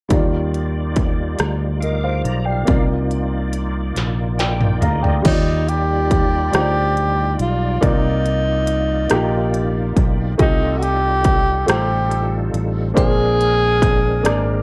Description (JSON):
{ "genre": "slow gospel", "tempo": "47 BPM (dotted quarters)", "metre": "6/8", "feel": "straight", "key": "Eb major", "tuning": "A4 = 441 Hz", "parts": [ { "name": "warm baby grand piano", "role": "accompaniment", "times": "0.1-14.6 s", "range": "Bb2 to Bb5", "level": "-25 LUFS", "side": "equal", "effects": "none" }, { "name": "bright tonewheel organ", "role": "sustained chords", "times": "0.1-14.6 s", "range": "G3 to D6", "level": "-30 LUFS", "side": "equal", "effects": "chorus vibrato, slow rotary speaker" }, { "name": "fingered electric bass", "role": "bass", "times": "0.1-14.6 s", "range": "Ab1 to Eb2", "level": "-23 LUFS", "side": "equal", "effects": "none" }, { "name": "industrial drum kit", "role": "drums", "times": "0.1-14.5 s", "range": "crash cymbal, hi-hat, kick drum, rim click, snare drum, toms", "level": "-21 LUFS", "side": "equal", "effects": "distortion" }, { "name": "breathy tenor saxophone", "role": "melody", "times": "5.3-14.6 s", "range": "Eb4 to Ab4", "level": "-22 LUFS", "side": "equal", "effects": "none" } ], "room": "little or no reverb", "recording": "worn, warbling old tape, cassette tape, warbly pitch drift", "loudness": "-18 LUFS", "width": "mono", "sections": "0.1-5.3 A section; 5.3-14.6 B section", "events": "drum fill 4.0-5.3; tonewheel organ fill 4.0-5.3", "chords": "0.1 Ebmaj9; 2.7 Cm11; 5.3 Ebmaj9; 7.8 Cm11; 10.4 F9/C; 13.0 Bb9", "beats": "| 0.11 1.40 | 2.69 3.97 | 5.26 6.54 | 7.83 9.11 | 10.40 11.68 | 12.96 14.24" }